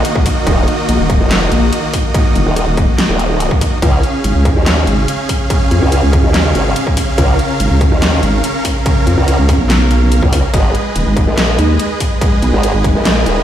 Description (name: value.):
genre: heavy wobble dubstep.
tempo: 143 BPM.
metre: 4/4.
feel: half-time.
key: unclear.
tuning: A4 = 435 Hz.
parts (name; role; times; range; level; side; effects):
supersaw chords; sustained chords; 0.0-13.4 s; Db3 to F5; -17 LUFS; right 1 dB; sidechain pumping.
formant-sweep wobble bass; bass; 0.0-13.4 s; Eb1 to Eb2; -14 LUFS; equal; chorus, overdrive.
dubstep drum kit; drums; 0.0-13.3 s; handclaps, hi-hat, snare drum; -19 LUFS; equal; none.
electronic kick drum; drums; 0.2-12.9 s; none; -14 LUFS; equal; distortion.
vowel-sweep wobble bass; bass; 0.9-12.9 s; Eb1 to F2; -12 LUFS; equal; chorus, overdrive.
room: light reverb.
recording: played on a big sound system in a bare room, stone room reverb.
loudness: -11 LUFS.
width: side -11 dB against mid.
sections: 0.0-13.4 A section.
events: none.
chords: 0.0 Ebm; 3.8 Db; 10.5 Abm.